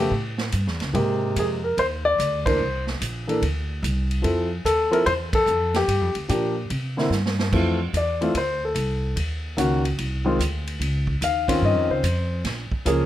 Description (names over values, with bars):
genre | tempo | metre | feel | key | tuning
jazz piano trio | 146 BPM | 4/4 | swing 66% on 8ths | F major | A4 = 440 Hz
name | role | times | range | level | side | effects
warm grand piano | melody | 0.0-13.1 s | C3 to F5 | -22 LUFS | left 1 dB | plate reverb
upright bass | bass | 0.0-13.1 s | Bb1 to C3 | -25 LUFS | equal | none
swinging big-band drum kit | drums | 0.1-13.0 s | crash cymbal, hi-hat, kick drum, ride cymbal, snare drum | -30 LUFS | right 2 dB | none
room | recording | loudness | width
light reverb | none | -21 LUFS | side -12 dB against mid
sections
0.0-7.5 A section; 7.5-13.1 B section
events
band accent 2.4, 5.3; drum fill 7.1-7.5; grand piano solo 7.5-13.1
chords
0.1 A7; 0.9 Abmaj9; 2.6 C7sus2; 4.2 Fmaj7; 5.9 Gm7; 6.7 C5; 7.5 Fmaj7; 9.2 Ebm7; 10.0 N.C.; 10.8 Dbmaj9; 12.4 Bbm7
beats
0.12 0.53 | 0.94 1.35 1.77 2.18 | 2.59 3.00 3.41 3.82 | 4.23 4.64 5.05 5.46 | 5.88 6.29 6.70 7.11 | 7.52 7.93 8.34 8.75 | 9.16 9.57 9.98 10.39 | 10.80 11.21 11.62 12.03 | 12.44 12.85